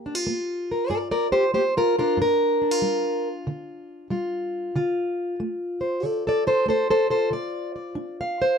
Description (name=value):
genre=acoustic country blues, solo or duo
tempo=94 BPM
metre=4/4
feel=swing 67% on 8ths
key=G minor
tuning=A4 = 440 Hz
part: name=fingerpicked plugged-in steel-string acoustic guitar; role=solo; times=0.0-8.6 s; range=G2 to E#5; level=-22 LUFS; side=equal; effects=none
room=light reverb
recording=close, detailed microphones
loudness=-22 LUFS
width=side -6 dB against mid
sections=0.0-8.6 A section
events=none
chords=0.0 Gm7; 4.8 Dm7